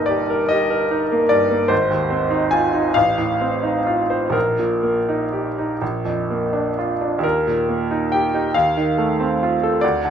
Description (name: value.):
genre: classical, romantic nocturne for solo piano.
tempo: 40-50 BPM (dotted quarters).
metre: 6/8.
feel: rubato.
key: Eb major.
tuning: A4 = 439 Hz.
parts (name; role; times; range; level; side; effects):
bright grand piano; solo; 0.0-10.1 s; G1 to Ab5; -17 LUFS; equal; none.
room: moderate recital hall reverb, RT60 1.7 s.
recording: minimal, uncompressed stereo recording.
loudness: -17 LUFS.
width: side -8 dB against mid.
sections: 0.0-10.1 A section.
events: none.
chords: 0.0 Eb/G; 1.7 Fm7/Ab; 3.0 F7/A; 4.3 Eb/Bb; 5.8 Bb; 7.2 Eb; 8.5 F7/Eb.